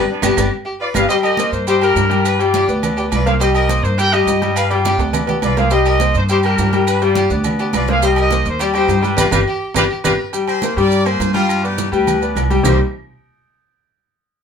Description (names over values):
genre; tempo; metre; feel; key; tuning
latin, salsa; 208 BPM; 4/4; straight; C minor; A4 = 436 Hz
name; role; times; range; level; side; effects
warm trumpet section; melody; 0.0-10.1 s; B3 to G5; -19 LUFS; right 2 dB; none
rich violin; second line; 0.0-10.3 s; G4 to C5; -24 LUFS; equal; none
bright concert grand piano; accompaniment; 0.0-12.8 s; C3 to G5; -18 LUFS; left 4 dB; none
upright bass; bass; 0.0-12.8 s; G1 to G2; -19 LUFS; right 1 dB; none
claves; percussion; 0.2-12.7 s; none; -29 LUFS; right 2 dB; none
congas; percussion; 0.2-12.7 s; none; -25 LUFS; right 2 dB; none
maracas; percussion; 0.2-12.7 s; none; -29 LUFS; right 8 dB; none
timbales and agogo bells; percussion; 0.2-12.7 s; none; -27 LUFS; right 2 dB; none
brilliant horn section; melody; 10.5-12.8 s; D4 to D5; -22 LUFS; equal; none
room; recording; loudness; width
wet studio ambience, RT60 0.5 s; band playing live in one room; -13 LUFS; side -7 dB against mid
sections
0.0-1.1 A section; 1.1-10.3 A section; 10.3-12.6 B section; 12.6-13.8 C section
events
band accent 0.0-1.1, 9.2-10.3; drum fill 4.8-5.7, 9.8-10.3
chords
0.0 G; 1.1 Cm7; 2.2 G7; 3.4 Cm7; 4.6 G7; 5.7 Cm7; 6.9 G7; 8.0 Cm7; 9.2 G; 10.3 C5; 11.5 G; 12.6 Cm7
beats
0.23 0.52 0.81 | 1.09 1.38 1.67 1.96 | 2.25 2.54 2.83 3.12 | 3.40 3.69 3.98 4.27 | 4.56 4.85 5.14 5.43 | 5.72 6.00 6.29 6.58 | 6.87 7.16 7.45 7.74 | 8.03 8.32 8.61 8.89 | 9.18 9.47 9.76 10.05 | 10.34 10.63 10.92 11.20 | 11.49 11.78 12.07 12.36 | 12.65